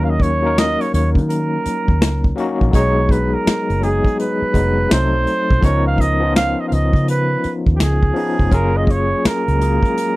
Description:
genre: R&B, neo-soul.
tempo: 83 BPM.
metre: 4/4.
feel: swing 64% on 16ths.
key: Eb minor.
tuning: A4 = 441 Hz.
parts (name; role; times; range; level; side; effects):
warm flugelhorn; melody; 0.0-10.2 s; G4 to F5; -20 LUFS; right 3 dB; slapback echo.
overdriven tine electric piano; accompaniment; 0.0-10.2 s; F3 to B4; -20 LUFS; left 3 dB; fast tremolo.
vintage muted fingered electric bass; bass; 0.0-9.8 s; F1 to Eb3; -18 LUFS; equal; none.
unplugged drum kit; drums; 0.2-10.2 s; finger snaps, hi-hat, kick drum, snare drum; -17 LUFS; equal; none.
room: little or no reverb.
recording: dry, close 1970s-style studio recording.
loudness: -14 LUFS.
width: side -19 dB against mid.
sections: 0.0-10.2 A section.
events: tine electric piano fill 10.0.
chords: 0.0 Ebm7; 2.7 B6; 4.9 Cdim7; 5.6 Db13; 8.5 Gbmaj9.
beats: 0.56 1.29 2.01 | 2.73 3.46 4.18 4.90 | 5.62 6.35 7.07 7.79 | 8.52 9.24 9.96.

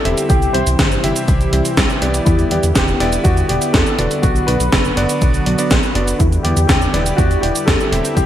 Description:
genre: italo disco.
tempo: 122 BPM.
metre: 4/4.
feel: straight.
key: E minor.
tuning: A4 = 440 Hz.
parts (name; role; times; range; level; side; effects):
dark concert grand piano; melody; 0.0-8.3 s; E4 to C5; -22 LUFS; left 2 dB; wide subtle chorus, digital delay.
warm analog pad; sustained chords; 0.0-8.3 s; C3 to B4; -22 LUFS; equal; chorus.
clear electric grand piano; stabs; 0.0-8.3 s; B3 to E5; -22 LUFS; right 2 dB; low-pass filter, digital delay.
chorused synth bass; bass; 0.1-8.3 s; E1 to E2; -18 LUFS; equal; none.
gated 80s digital drum machine; drums; 0.1-8.3 s; cabasa, hi-hat, snare drum; -19 LUFS; right 1 dB; gated reverb, gated reverb snare.
electronic kick drum; drums; 0.3-8.3 s; none; -17 LUFS; equal; overdrive.
room: light reverb.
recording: bright 1980s-style digital production.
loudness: -13 LUFS.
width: side -11 dB against mid.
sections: 0.0-8.3 A section.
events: none.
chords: 0.3 C; 2.3 Em7; 4.2 Bm; 6.2 Em7.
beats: | 0.30 0.79 1.28 1.77 | 2.27 2.76 3.25 3.74 | 4.23 4.72 5.22 5.71 | 6.20 6.69 7.18 7.67 | 8.17.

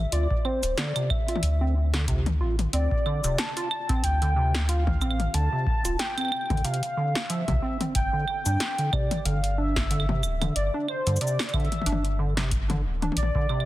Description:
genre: IDM.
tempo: 92 BPM.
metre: 4/4.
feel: swing 56% on 16ths.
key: unclear.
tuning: A4 = 439 Hz.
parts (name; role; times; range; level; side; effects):
warm velvety synth lead; melody; 0.0-13.7 s; C5 to A5; -30 LUFS; equal; chorus, digital delay.
warm sub bass; bass; 0.0-13.3 s; D1 to G2; -25 LUFS; equal; none.
deep acid bass; arpeggios; 0.1-13.7 s; C3 to F4; -30 LUFS; right 2 dB; tape echo.
electro analog drum machine; drums; 0.1-13.7 s; claves, hi-hat, shaker, snare drum, toms; -30 LUFS; left 1 dB; none.
electronic kick drum; drums; 0.3-13.5 s; none; -28 LUFS; equal; none.
room: light reverb.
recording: dense, heavily limited modern master.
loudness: -23 LUFS.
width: side -16 dB against mid.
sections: 0.0-13.7 A section.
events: none.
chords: 0.0 Dm7; 8.0 G5.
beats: | 0.12 0.78 1.43 2.08 | 2.73 3.38 4.04 4.69 | 5.34 5.99 6.64 7.30 | 7.95 8.60 9.25 9.91 | 10.56 11.21 11.86 12.52 | 13.17.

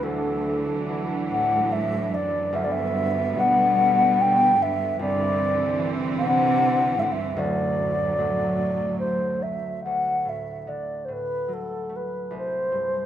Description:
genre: celtic folk, Celtic slow air.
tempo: 73 BPM.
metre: 3/4.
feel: uneven beats, rubato.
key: D mixolydian.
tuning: A4 = 439 Hz.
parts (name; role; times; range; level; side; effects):
mellow hollow baroque flute; melody; 0.0-13.1 s; A4 to G5; -23 LUFS; left 1 dB; none.
warm cello; second line; 0.0-9.4 s; D2 to C3; -30 LUFS; right 3 dB; none.
concert harp; accompaniment; 0.0-13.1 s; D1 to E4; -32 LUFS; left 1 dB; none.
clear studio string section; sustained chords; 0.0-9.8 s; D2 to D4; -28 LUFS; right 3 dB; none.
room: moderate lush hall reverb, RT60 2.4 s.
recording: rough home demo mix.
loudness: -21 LUFS.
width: side -10 dB against mid.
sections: 0.0-9.9 A section; 9.9-13.1 B section.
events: none.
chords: 0.0 Dadd9; 2.5 G/D; 5.0 Cadd9; 7.4 D; 12.3 C5.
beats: | 0.03 0.89 1.71 | 2.54 3.36 4.17 | 4.98 5.77 6.56 | 7.36 8.17 9.01 | 9.85 10.68 11.51 | 12.33.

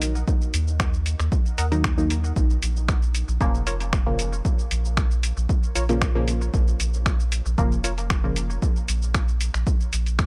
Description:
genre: dub techno.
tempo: 115 BPM.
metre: 4/4.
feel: straight.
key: unclear.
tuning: A4 = 440 Hz.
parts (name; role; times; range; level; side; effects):
filtered dub chord stab; stabs; 0.0-8.5 s; Bb2 to Eb4; -32 LUFS; equal; chorus, phaser, sidechain pumping, dub echo.
soft dub sub bass; bass; 0.0-10.3 s; F1 to Eb2; -27 LUFS; equal; sidechain pumping.
lo-fi sampler-style drum kit; drums; 0.0-10.3 s; finger snaps, hi-hat, shaker; -32 LUFS; equal; overdrive, small room ambience.
electronic kick drum; drums; 0.3-10.3 s; none; -25 LUFS; equal; small room ambience.
wavetable chord stab; riff; 1.6-7.9 s; F4 to Gb5; -39 LUFS; equal; sidechain pumping, dub echo.
room: digital ambience.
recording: none.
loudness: -23 LUFS.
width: mono.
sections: 0.0-10.3 A section.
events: none.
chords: 0.0 Ebm; 2.4 Bbm.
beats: | 0.28 0.80 1.32 1.84 | 2.36 2.88 3.41 3.93 | 4.45 4.97 5.49 6.01 | 6.54 7.06 7.58 8.10 | 8.62 9.15 9.67 10.19.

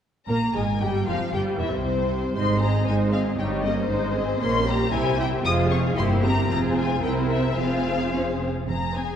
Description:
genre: quick classical-period movement for string orchestra.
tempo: 116 BPM.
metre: 2/4.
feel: rubato.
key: F minor.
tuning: A4 = 437 Hz.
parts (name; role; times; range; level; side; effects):
warm symphonic violin section; melody; 0.3-9.2 s; C5 to Eb6; -29 LUFS; left 4 dB; none.
dark symphonic violin section; second line; 0.3-9.2 s; C4 to F5; -29 LUFS; left 2 dB; none.
rich symphonic viola section; accompaniment; 0.3-9.2 s; C3 to C5; -27 LUFS; right 1 dB; none.
dark symphonic cello section; bass; 0.3-9.1 s; C2 to C3; -27 LUFS; right 2 dB; none.
rich symphonic double bass section; bass; 0.3-9.1 s; E1 to C2; -28 LUFS; right 2 dB; none.
room: wet concert hall reverb, RT60 2.5 s.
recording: heard from further back in the room.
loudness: -21 LUFS.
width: side -8 dB against mid.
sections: 0.3-8.7 A section.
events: none.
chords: 0.3 Fm; 1.3 C/G; 1.8 N.C.; 2.4 Ab; 3.4 Eb7/G; 3.9 Ab; 4.4 Gdim/Bb; 4.9 C; 5.4 Fm; 6.0 C7/G; 6.5 Fm; 7.0 C7; 7.6 Fm.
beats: | 0.28 0.81 | 1.33 1.85 | 2.36 2.87 | 3.38 3.90 | 4.41 4.93 | 5.44 5.96 | 6.50 7.03 | 7.58 8.14 | 8.70.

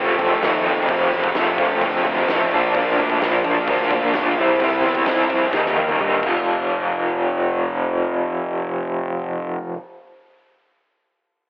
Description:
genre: garage rock duo or trio.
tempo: 129 BPM.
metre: 4/4.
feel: straight.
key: F mixolydian.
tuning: A4 = 440 Hz.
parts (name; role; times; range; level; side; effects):
raw garage guitar; riff; 0.0-9.8 s; F2 to E4; -18 LUFS; equal; overdrive, tremolo, cassette tape.
fuzz picked electric bass; bass; 0.0-9.6 s; F1 to G2; -28 LUFS; equal; overdrive.
oversized low-tuned drum kit; drums; 0.2-6.3 s; crash cymbal, kick drum, snare drum, toms; -26 LUFS; equal; cassette tape.
room: wet spring reverb, RT60 1.7 s, studio ambience.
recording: home recording on cassette, telephone sound.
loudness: -17 LUFS.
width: side -25 dB against mid.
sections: 0.0-6.5 A section; 6.5-10.2 B section.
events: drum fill 5.6-6.5.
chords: 0.0 F; 2.5 Bb; 4.4 C; 5.6 Eb; 6.3 F5.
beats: 0.45 | 0.91 1.38 1.84 2.30 | 2.77 3.23 3.69 4.16 | 4.62 5.09 5.55 6.02 | 6.48 6.95 7.42 7.88 | 8.35 8.81 9.28 9.74.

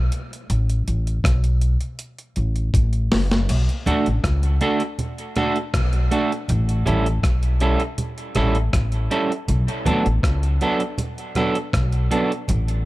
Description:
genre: dub reggae.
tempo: 80 BPM.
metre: 4/4.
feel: straight.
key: B minor.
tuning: A4 = 440 Hz.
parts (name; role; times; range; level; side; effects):
upright bass; bass; 0.0-12.8 s; F#1 to D2; -20 LUFS; equal; none.
dusty soul sampler-style drum kit; drums; 0.1-12.8 s; crash cymbal, hi-hat, kick drum, rim click, snare drum; -23 LUFS; equal; overdrive.
congas; percussion; 3.5-12.7 s; none; -28 LUFS; right 2 dB; none.
electric guitar at the edge of break-up; accompaniment; 3.9-12.3 s; F#3 to A4; -23 LUFS; right 2 dB; harmonic tremolo, dub echo.
room: little or no reverb.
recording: none.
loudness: -18 LUFS.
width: side -18 dB against mid.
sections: 0.0-3.5 A section; 3.5-12.9 B section.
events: break 0.0-3.5; drum fill 2.0-3.5.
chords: 0.5 F#madd11 (rootless); 3.5 Bm7; 6.5 A7; 9.5 Bm7.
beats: | 0.49 1.24 1.99 2.74 | 3.49 4.24 4.99 5.74 | 6.49 7.24 7.98 8.73 | 9.48 10.23 10.98 11.73 | 12.48.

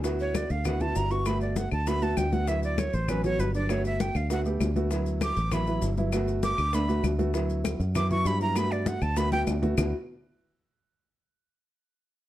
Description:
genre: Afro-Cuban jazz.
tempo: 197 BPM.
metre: 4/4.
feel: straight.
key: D major.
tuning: A4 = 440 Hz.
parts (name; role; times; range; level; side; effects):
dark grand piano; accompaniment; 0.0-9.9 s; F#3 to G4; -30 LUFS; right 1 dB; none.
fingered electric bass; bass; 0.0-9.9 s; G1 to G2; -28 LUFS; equal; none.
bongos; percussion; 0.0-9.8 s; none; -39 LUFS; left 5 dB; none.
congas; percussion; 0.0-9.8 s; none; -34 LUFS; left 2 dB; none.
maracas; percussion; 0.0-9.8 s; none; -44 LUFS; left 5 dB; none.
breathy bright jazz flute; melody; 0.2-9.4 s; B4 to D6; -31 LUFS; right 1 dB; none.
claves; percussion; 0.3-9.8 s; none; -41 LUFS; left 7 dB; none.
room: light reverb.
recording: dark, warm production.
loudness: -25 LUFS.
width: side -14 dB against mid.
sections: 0.0-9.8 A section; 9.8-11.0 B section.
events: flute solo 0.0-9.8; drum fill 9.3-9.8.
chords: 0.0 D6; 1.3 Gmaj7; 2.5 D6; 3.7 Gmaj7; 4.9 D6; 6.1 Gmaj7; 7.3 D6; 8.6 Gmaj7; 9.8 D6.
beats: | 0.04 0.35 0.65 0.96 | 1.26 1.57 1.87 2.17 | 2.48 2.78 3.09 3.39 | 3.69 4.00 4.30 4.61 | 4.91 5.21 5.52 5.82 | 6.13 6.43 6.74 7.04 | 7.34 7.65 7.95 8.26 | 8.56 8.86 9.17 9.47 | 9.78.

